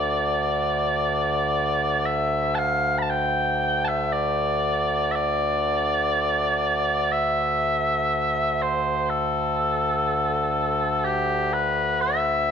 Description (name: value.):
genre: celtic folk.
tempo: 56-62 BPM.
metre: 4/4.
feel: rubato.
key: unclear.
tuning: A4 = 440 Hz.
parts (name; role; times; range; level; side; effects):
mellow small bagpipes; solo; 0.0-12.5 s; D2 to B5; -21 LUFS; equal; none.
room: light reverb.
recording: dark, warm production.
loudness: -21 LUFS.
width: side -7 dB against mid.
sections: 0.0-3.1 A section; 3.1-12.5 B section.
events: none.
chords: none.